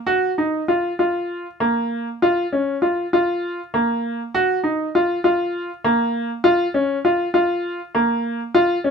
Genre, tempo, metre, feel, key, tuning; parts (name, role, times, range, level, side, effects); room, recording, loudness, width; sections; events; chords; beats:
contemporary instrumental, contemporary; 200 BPM (eighths); 7/8; straight; A4 = 439 Hz
clear grand piano; solo; 0.1-8.9 s; Bb3 to Gb4; -18 LUFS; equal
light reverb; -18 LUFS; side -6 dB against mid
0.0-8.9 A section
| 0.09 0.39 0.69 0.99 1.30 1.60 1.91 | 2.22 2.52 2.83 3.13 3.44 3.74 4.04 | 4.35 4.65 4.95 5.25 5.54 5.84 6.14 | 6.43 6.73 7.03 7.33 7.63 7.93 8.23 | 8.54 8.84